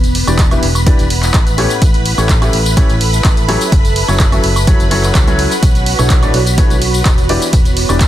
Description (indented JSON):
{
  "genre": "piano house",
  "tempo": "126 BPM",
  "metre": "4/4",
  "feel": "straight",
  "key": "A mixolydian",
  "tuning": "A4 = 440 Hz",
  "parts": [
    { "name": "analog string pad", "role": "sustained chords", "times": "0.0-8.1 s", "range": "B4 to B5", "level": "-23 LUFS", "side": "right 2 dB", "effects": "ensemble chorus, sidechain pumping" },
    { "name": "fingered electric bass", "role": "bass", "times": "0.0-8.1 s", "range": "E1 to C#2", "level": "-16 LUFS", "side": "equal", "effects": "sidechain pumping" },
    { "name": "punchy analog drum machine", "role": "drums", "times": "0.0-8.1 s", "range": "handclaps, hi-hat, ride cymbal, tambourine, woodblock", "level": "-18 LUFS", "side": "right 1 dB", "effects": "none" },
    { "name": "granular cloud pad", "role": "texture", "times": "0.0-8.1 s", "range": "B3 to B5", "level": "-21 LUFS", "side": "right 1 dB", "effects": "built-in reverb, sidechain pumping" },
    { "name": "clear baby grand piano", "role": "riff", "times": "0.3-8.0 s", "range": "A2 to E5", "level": "-18 LUFS", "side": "left 1 dB", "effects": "sidechain pumping, ping-pong delay" },
    { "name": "electronic kick drum", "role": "drums", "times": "0.4-8.1 s", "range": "none", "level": "-12 LUFS", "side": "equal", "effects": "none" }
  ],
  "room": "little or no reverb",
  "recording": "dense, heavily limited modern master",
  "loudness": "-9 LUFS",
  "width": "side -13 dB against mid",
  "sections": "0.0-8.1 A section",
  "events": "none",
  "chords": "0.0 Em7; 1.6 A7; 3.7 F#m7; 5.6 Bm11; 7.3 Em7",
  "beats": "0.39 0.86 1.34 | 1.82 2.29 2.77 3.25 | 3.72 4.20 4.67 5.15 | 5.63 6.10 6.58 7.05 | 7.53 8.01"
}